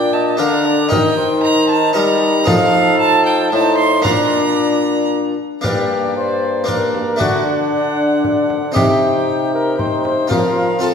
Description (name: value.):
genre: classical, renaissance-style consort dance.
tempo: 115 BPM.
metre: 3/4.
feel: straight.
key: Bb major.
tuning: A4 = 444 Hz.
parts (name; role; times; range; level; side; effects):
mellow cornet; melody; 0.0-10.9 s; D4 to F5; -21 LUFS; left 4 dB; none.
rich violin; second line; 0.0-10.9 s; D5 to C6; -20 LUFS; right 5 dB; none.
clear trombone; accompaniment; 0.0-10.9 s; Bb3 to F4; -20 LUFS; left 2 dB; none.
harpsichord; accompaniment; 0.0-10.9 s; G2 to Bb4; -21 LUFS; left 1 dB; none.
warm bassoon; bass; 0.0-10.9 s; G2 to G3; -20 LUFS; right 1 dB; none.
frame drum; percussion; 0.9-10.6 s; none; -24 LUFS; left 1 dB; none.
room: wet scoring stage reverb, RT60 1.6 s.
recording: none.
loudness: -13 LUFS.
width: side -6 dB against mid.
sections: 0.0-5.6 A section; 5.6-10.9 B section.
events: none.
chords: 0.0 Bb; 0.9 Eb; 2.5 F7; 4.0 Bb; 5.6 Gm; 7.2 D; 8.8 Cm; 10.3 Fsus4.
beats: 0.39 | 0.91 1.43 1.95 | 2.47 2.99 3.52 | 4.04 4.58 5.11 | 5.63 6.16 6.68 | 7.20 7.72 8.24 | 8.76 9.28 9.79 | 10.31 10.83.